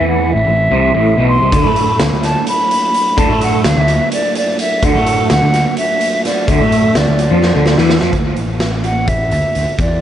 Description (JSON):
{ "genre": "psychedelic rock", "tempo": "254 BPM (eighths)", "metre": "7/8", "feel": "straight", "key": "unclear", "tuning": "A4 = 440 Hz", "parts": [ { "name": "hollow concert flute", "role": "melody", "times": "0.0-10.0 s", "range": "D5 to C6", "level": "-16 LUFS", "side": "equal", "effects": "tape echo" }, { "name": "percussive tonewheel organ", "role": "sustained chords", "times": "0.0-8.1 s", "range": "E3 to F#4", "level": "-25 LUFS", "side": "right 5 dB", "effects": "none" }, { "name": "twangy electric guitar", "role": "riff", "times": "0.0-8.1 s", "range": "A2 to A3", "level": "-16 LUFS", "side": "equal", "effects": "rotary speaker, double-tracked left and right, tape echo" }, { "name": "fuzz picked electric bass", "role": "bass", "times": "0.0-10.0 s", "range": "A1 to A2", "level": "-16 LUFS", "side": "equal", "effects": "overdrive" }, { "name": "raw garage drum kit", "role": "drums", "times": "1.5-9.9 s", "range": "hi-hat, kick drum, snare drum", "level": "-18 LUFS", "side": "equal", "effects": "tape echo" } ], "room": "small room ambience", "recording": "echo-heavy mix, nothing above 10.6 kHz", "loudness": "-11 LUFS", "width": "side -10 dB against mid", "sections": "0.0-8.1 A section; 8.1-10.0 B section", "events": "drum fill 7.4-8.1", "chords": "0.0 Am; 1.5 Dadd9; 8.1 D5" }